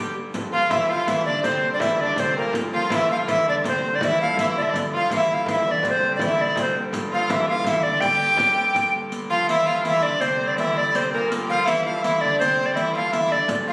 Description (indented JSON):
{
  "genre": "medieval dance",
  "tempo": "164 BPM",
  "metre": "3/4",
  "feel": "straight",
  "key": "unclear",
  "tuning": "A4 = 439 Hz",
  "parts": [
    { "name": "bright reedy tenor recorder", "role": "melody", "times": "0.0-13.7 s", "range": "G4 to G5", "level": "-23 LUFS", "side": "equal", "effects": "none" },
    { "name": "bright fiddle", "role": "second line", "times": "0.0-13.7 s", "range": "G3 to G4", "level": "-30 LUFS", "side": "equal", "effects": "none" },
    { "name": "lute", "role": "second line", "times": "0.0-13.7 s", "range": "G2 to G3", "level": "-34 LUFS", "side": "equal", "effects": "none" },
    { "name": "rich hurdy-gurdy", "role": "drone", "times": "0.0-13.7 s", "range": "G2 to D3", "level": "-34 LUFS", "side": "equal", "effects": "none" },
    { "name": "frame drum", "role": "percussion", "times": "0.3-8.9, 13.5-13.7 s", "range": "none", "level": "-34 LUFS", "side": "equal", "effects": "none" },
    { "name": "riq", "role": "percussion", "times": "0.3-13.7 s", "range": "none", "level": "-36 LUFS", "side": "equal", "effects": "none" }
  ],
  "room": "wet recital hall reverb, RT60 1.3 s",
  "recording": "recorded on a phone in the room, studio reverb",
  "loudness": "-22 LUFS",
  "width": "mono",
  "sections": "0.3-9.1 A section; 9.1-13.7 A section",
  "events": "none",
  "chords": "none"
}